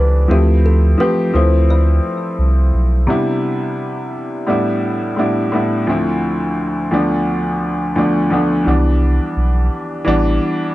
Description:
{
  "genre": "lo-fi hip hop",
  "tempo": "86 BPM",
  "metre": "4/4",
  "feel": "swing 61% on 16ths",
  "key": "D dorian",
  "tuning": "A4 = 440 Hz",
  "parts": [
    { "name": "kalimba", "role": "melody", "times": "0.0-2.7 s", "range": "G4 to D5", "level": "-22 LUFS", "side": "left 1 dB", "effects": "low-pass filter, plate reverb, tape echo" },
    { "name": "clear upright piano", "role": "accompaniment", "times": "0.0-10.7 s", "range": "D2 to G4", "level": "-16 LUFS", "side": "equal", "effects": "low-pass filter, plate reverb" },
    { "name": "saturated sub bass", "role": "bass", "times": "0.0-3.1, 8.7-10.4 s", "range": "A1 to D2", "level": "-13 LUFS", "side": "equal", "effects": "none" }
  ],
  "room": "moderate studio reverb, RT60 0.6 s",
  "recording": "nothing above 10.5 kHz",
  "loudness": "-14 LUFS",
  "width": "side -16 dB against mid",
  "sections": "0.0-3.1 A section; 3.1-10.7 B section",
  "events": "none",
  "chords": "0.3 Dm9; 1.3 Dm7; 3.1 Cmaj9; 4.5 A9sus4; 5.9 Dm9; 6.9 Dm6; 8.7 Cmaj9; 10.1 A9sus4"
}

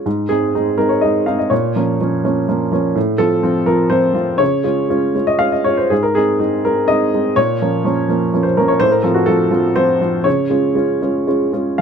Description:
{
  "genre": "neoclassical minimalist piano",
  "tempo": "124 BPM",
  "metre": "3/4",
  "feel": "rubato",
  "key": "Bb minor",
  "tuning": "A4 = 439 Hz",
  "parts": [
    { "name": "warm upright piano", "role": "solo", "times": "0.0-11.8 s", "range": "Ab2 to F5", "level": "-14 LUFS", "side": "equal", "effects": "none" }
  ],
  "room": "little or no reverb",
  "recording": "close, detailed microphones",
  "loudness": "-14 LUFS",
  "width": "side -7 dB against mid",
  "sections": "0.1-11.8 A section",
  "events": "none",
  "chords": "0.1 Ab; 1.5 Bbm; 3.0 F/A; 4.4 Db; 5.9 Ab; 7.4 Bbm; 8.8 F/A; 10.3 Db"
}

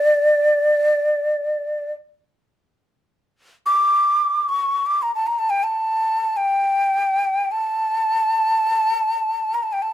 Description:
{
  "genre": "Arabic maqam ensemble",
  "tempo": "free time",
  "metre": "none",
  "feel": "none",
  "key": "unclear",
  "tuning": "A4 = 442 Hz",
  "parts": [
    { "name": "breathy ney", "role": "solo", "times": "0.0-9.9 s", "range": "D5 to D6", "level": "-17 LUFS", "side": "equal", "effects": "none" }
  ],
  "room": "moderate small room reverb, RT60 0.5 s",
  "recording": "none",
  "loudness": "-17 LUFS",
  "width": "side -12 dB against mid",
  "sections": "0.0-3.1 A section; 3.1-9.9 A section",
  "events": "none",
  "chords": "none"
}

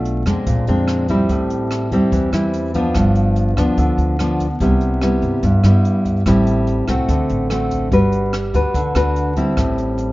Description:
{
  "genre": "bossa nova",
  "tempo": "145 BPM",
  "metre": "4/4",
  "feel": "straight",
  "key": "G major",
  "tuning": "A4 = 440 Hz",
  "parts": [
    { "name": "nylon-string guitar", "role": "accompaniment", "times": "0.0-10.1 s", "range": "G2 to B4", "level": "-16 LUFS", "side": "equal", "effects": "none" },
    { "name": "upright bass", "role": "bass", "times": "0.0-10.1 s", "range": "G1 to G2", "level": "-20 LUFS", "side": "equal", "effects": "none" },
    { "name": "jazz brush drum kit", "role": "drums", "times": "0.1-10.1 s", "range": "hi-hat, kick drum, rim click", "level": "-25 LUFS", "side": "equal", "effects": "none" }
  ],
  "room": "light reverb",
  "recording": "dark, warm production, vinyl crackle, nothing above 7.5 kHz",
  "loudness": "-15 LUFS",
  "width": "side -18 dB against mid",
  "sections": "0.0-10.1 A section",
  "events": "none",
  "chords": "0.5 Bb9; 1.3 Am7; 3.0 G7; 4.6 Cmaj7; 6.3 Am7; 7.1 D7; 7.9 Gmaj7; 9.6 Am7"
}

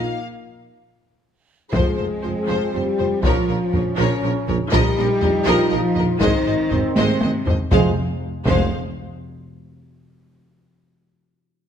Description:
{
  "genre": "cinematic, epic orchestral film score",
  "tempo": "120 BPM",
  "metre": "3/4",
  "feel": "straight",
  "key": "F minor",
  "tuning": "A4 = 444 Hz",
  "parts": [
    { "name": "warm symphonic violin section", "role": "melody", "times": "0.0-8.8 s", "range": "C5 to F5", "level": "-30 LUFS", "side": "left 4 dB", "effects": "none" },
    { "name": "warm symphonic violin section", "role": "second line", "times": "0.0-8.7 s", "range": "Bb4 to F5", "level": "-28 LUFS", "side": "left 4 dB", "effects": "none" },
    { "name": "warm symphonic viola section", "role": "accompaniment", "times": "0.0-8.7 s", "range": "F3 to Bb3", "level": "-26 LUFS", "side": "right 2 dB", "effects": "none" },
    { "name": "mellow French horn section", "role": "sustained chords", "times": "0.0-7.9 s", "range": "C4 to Ab4", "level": "-24 LUFS", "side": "left 5 dB", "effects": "none" },
    { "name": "warm trombone section", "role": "sustained chords", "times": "0.0-7.9 s", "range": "C3 to Eb4", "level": "-28 LUFS", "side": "right 5 dB", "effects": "none" },
    { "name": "mellow tuba", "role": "bass", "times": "0.0-8.7 s", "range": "F1 to Bb1", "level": "-27 LUFS", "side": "right 4 dB", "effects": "none" },
    { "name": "warm symphonic cello section", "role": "bass", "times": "0.0-8.7 s", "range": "C3 to Ab3", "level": "-27 LUFS", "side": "right 3 dB", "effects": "none" },
    { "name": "warm symphonic double bass section", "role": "bass", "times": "0.0-8.7 s", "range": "F1 to F2", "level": "-26 LUFS", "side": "right 4 dB", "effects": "none" },
    { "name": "taiko ensemble", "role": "drums", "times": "1.7-9.4 s", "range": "none", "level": "-23 LUFS", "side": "equal", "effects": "none" },
    { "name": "timpani", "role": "percussion", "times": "7.7-8.7 s", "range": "F2", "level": "-26 LUFS", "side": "left 2 dB", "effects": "none" }
  ],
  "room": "moderate scoring stage reverb, RT60 1.5 s",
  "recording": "close, detailed microphones",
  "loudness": "-17 LUFS",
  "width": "side -8 dB against mid",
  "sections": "0.0-1.7 A section; 1.7-7.7 B section; 7.7-9.2 C section",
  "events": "break 0.2-1.7; drum fill 7.0-7.7",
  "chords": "0.2 N.C.; 1.7 Fm; 3.2 Bbm; 4.7 Ebadd9/Bb; 6.2 Ab; 7.7 Fm"
}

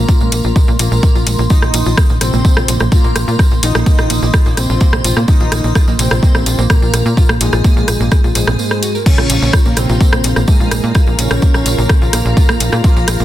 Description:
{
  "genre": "melodic techno",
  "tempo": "127 BPM",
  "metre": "4/4",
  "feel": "straight",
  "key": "unclear",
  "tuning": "A4 = 440 Hz",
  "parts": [
    { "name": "analog synth brass", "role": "melody", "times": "0.0-13.2 s", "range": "Ab2 to F4", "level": "-21 LUFS", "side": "equal", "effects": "chorus, sidechain pumping, dub echo" },
    { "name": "airy dreamy lead", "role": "second line", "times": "0.0-13.2 s", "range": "Ab4 to F5", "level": "-25 LUFS", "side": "equal", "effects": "chorus, sidechain pumping, dub echo" },
    { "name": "soft round pluck", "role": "arpeggios", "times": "0.0-13.2 s", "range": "Ab3 to C5", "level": "-23 LUFS", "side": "right 2 dB", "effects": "chorus, sidechain pumping, dub echo" },
    { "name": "tight sequencer bass", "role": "bass", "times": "0.0-13.2 s", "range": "Bb1 to Bb2", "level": "-16 LUFS", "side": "equal", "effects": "sidechain pumping" },
    { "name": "warbly tape-like pad", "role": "texture", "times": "0.0-13.2 s", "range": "Eb4 to C6", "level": "-29 LUFS", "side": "left 2 dB", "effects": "chorus, built-in reverb, sidechain pumping" },
    { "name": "electronic kick drum", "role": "drums", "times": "0.1-12.9 s", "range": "none", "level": "-11 LUFS", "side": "equal", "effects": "overdrive, studio reverb" },
    { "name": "tambourine", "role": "percussion", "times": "0.1-13.2 s", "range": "none", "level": "-25 LUFS", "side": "right 3 dB", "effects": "none" },
    { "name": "deep house drum kit", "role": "drums", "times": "0.3-13.2 s", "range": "crash cymbal, hi-hat, rim click", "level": "-18 LUFS", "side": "equal", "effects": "overdrive, sidechain pumping on hats, studio reverb, sidechain pumping on cymbals" },
    { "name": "muted studio string section", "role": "sustained chords", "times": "9.1-13.2 s", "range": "F4 to Bb5", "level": "-27 LUFS", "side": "left 2 dB", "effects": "sidechain pumping" }
  ],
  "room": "little or no reverb",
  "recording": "dense, heavily limited modern master",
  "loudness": "-10 LUFS",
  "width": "side -13 dB against mid",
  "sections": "0.0-13.2 A section",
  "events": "break 8.6-9.1",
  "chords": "0.0 Bb5; 1.5 Abadd9/Bb; 9.1 Bbm"
}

